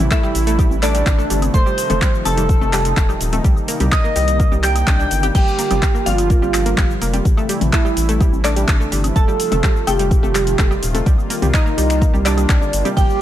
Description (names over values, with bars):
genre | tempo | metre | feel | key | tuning
progressive house | 126 BPM | 4/4 | straight | unclear | A4 = 440 Hz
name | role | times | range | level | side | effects
warm analog pad | sustained chords | 0.0-13.2 s | C3 to F4 | -26 LUFS | equal | chorus, tremolo, sidechain pumping
round analog bass | bass | 0.0-13.1 s | Eb1 to C2 | -20 LUFS | equal | sidechain pumping
deep house drum kit | drums | 0.0-13.2 s | cabasa, crash cymbal, finger snaps, handclaps, hi-hat, ride cymbal | -24 LUFS | left 1 dB | none
expressive synth lead | melody | 0.1-13.2 s | D4 to G5 | -22 LUFS | right 2 dB | wide subtle chorus, ping-pong delay
glassy wavetable pluck | second line | 0.1-13.2 s | D5 to G6 | -26 LUFS | left 1 dB | chorus, cassette tape, sidechain pumping, ping-pong delay
analog pluck | arpeggios | 0.1-13.0 s | D3 to G4 | -25 LUFS | right 1 dB | chorus, sidechain pumping, ping-pong delay
electronic kick drum | drums | 0.1-13.1 s | none | -16 LUFS | equal | none
electronic woodblock, congas and toms | percussion | 0.2-13.1 s | none | -26 LUFS | left 4 dB | overdrive, sidechain pumping on perc, sidechain pumping on toms
room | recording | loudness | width
digital ambience | none | -14 LUFS | side -12 dB against mid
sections
0.0-13.2 A section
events
none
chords
0.0 Am7; 1.5 F7; 3.4 Cm7; 5.3 Gm7; 7.3 Am7; 9.2 F7; 11.1 Cm7